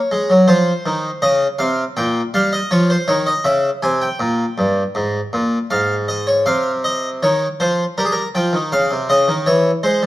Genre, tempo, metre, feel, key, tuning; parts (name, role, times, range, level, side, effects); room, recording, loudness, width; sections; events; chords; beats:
classical, baroque-style two-part invention for harpsichord; 80 BPM; 4/4; straight; F minor from 6.5 s; A4 = 440 Hz
harpsichord; solo; 0.0-10.1 s; G2 to Ab5; -15 LUFS; equal
moderate recital hall reverb, RT60 1.3 s; close, detailed microphones; -15 LUFS; side -16 dB against mid
0.0-6.5 A section; 6.5-10.1 B section
0.5 F5; 2.0 Gm7b5/Bb; 3.5 Edim7; 5.0 Fm/Ab; 6.5 F5/C; 8.0 Gm7b5; 9.5 E5
| 0.48 1.23 1.97 2.72 | 3.46 4.21 4.96 5.71 | 6.47 7.22 7.97 8.72 | 9.46